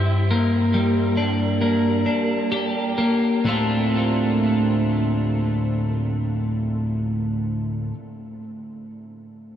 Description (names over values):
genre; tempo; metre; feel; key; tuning
rock; 62-72 BPM; 4/4; straight; D minor; A4 = 440 Hz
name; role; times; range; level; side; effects
twelve-string electric guitar; arpeggios; 0.0-7.9 s; D2 to G4; -20 LUFS; equal; wide subtle chorus, diffuse ambient delay
room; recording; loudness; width
wet huge ambient reverb, RT60 9.7 s; dreamy mix soaked in reverb; -19 LUFS; side -10 dB against mid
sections
0.0-3.5 A section; 3.5-7.3 B section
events
slowing down 0.0-3.5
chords
0.0 Gm; 3.5 Dm7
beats
0.73 1.60 2.51 | 3.46 4.43 5.40 6.37